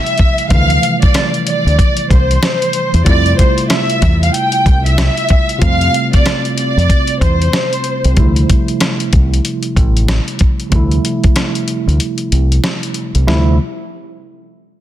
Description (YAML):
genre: hip hop, boom-bap hip-hop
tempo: 94 BPM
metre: 4/4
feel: swing 61% on 16ths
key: D minor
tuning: A4 = 440 Hz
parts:
  - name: dark studio violin section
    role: melody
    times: 0.0-8.1 s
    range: C5 to G5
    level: -16 LUFS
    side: equal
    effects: digital delay
  - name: tine electric piano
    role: accompaniment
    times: 0.0-13.6 s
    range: C3 to F4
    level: -19 LUFS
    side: right 2 dB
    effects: medium stereo tremolo, cassette tape
  - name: dusty soul sampler-style drum kit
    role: drums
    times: 0.1-13.5 s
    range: hi-hat, kick drum, rim click, snare drum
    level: -14 LUFS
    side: equal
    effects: none
  - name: deep dub fingered electric bass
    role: bass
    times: 0.5-13.6 s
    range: A1 to F2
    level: -13 LUFS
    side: equal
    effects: none
room: little or no reverb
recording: dense, heavily limited modern master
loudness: -11 LUFS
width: side -12 dB against mid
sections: 0.0-8.2 A section; 8.2-13.3 B section; 13.3-14.8 C section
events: kick muted 12.0-13.3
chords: 0.0 Dm11; 3.1 Fmaj7; 8.2 Dm11